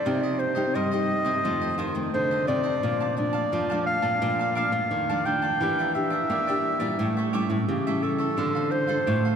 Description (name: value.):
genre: samba.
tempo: 87 BPM.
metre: 4/4.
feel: straight.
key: unclear.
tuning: A4 = 440 Hz.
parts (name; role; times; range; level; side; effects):
mellow clarinet; melody; 0.0-9.4 s; G4 to G5; -26 LUFS; equal; none.
cavaquinho; accompaniment; 0.0-9.4 s; D4 to A5; -34 LUFS; right 3 dB; none.
nylon-string guitar; accompaniment; 0.0-9.4 s; F2 to A4; -30 LUFS; left 2 dB; none.
nylon-string guitar; bass; 0.1-9.4 s; A2 to Bb3; -28 LUFS; equal; none.
room: wet cathedral reverb, RT60 5.9 s.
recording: recorded in a church or concert hall.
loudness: -23 LUFS.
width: side -7 dB against mid.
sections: 0.0-9.4 A section.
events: none.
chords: 0.1 Cm7; 1.4 F7; 2.8 Bbmaj7; 5.6 Em7b5; 7.0 A7; 8.4 Dm7.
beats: | 0.06 0.75 1.45 2.14 | 2.83 3.53 4.22 4.91 | 5.61 6.30 6.99 7.68 | 8.38 9.07.